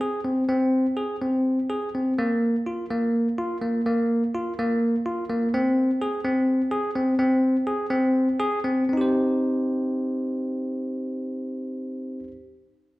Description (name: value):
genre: contemporary instrumental, contemporary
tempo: 250 BPM (eighths)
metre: 7/8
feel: straight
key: C minor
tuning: A4 = 438 Hz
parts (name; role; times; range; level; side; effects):
- bell-like tine electric piano; solo; 0.0-12.3 s; Bb3 to C5; -22 LUFS; equal; none
room: wet recital hall reverb, RT60 1.3 s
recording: recorded in a church or concert hall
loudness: -22 LUFS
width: side -18 dB against mid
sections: 0.0-8.9 A section; 8.9-12.3 B section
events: slowing down 5.5-8.9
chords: 0.0 Ab/C; 2.2 Bb5; 5.5 Ab; 8.9 Cm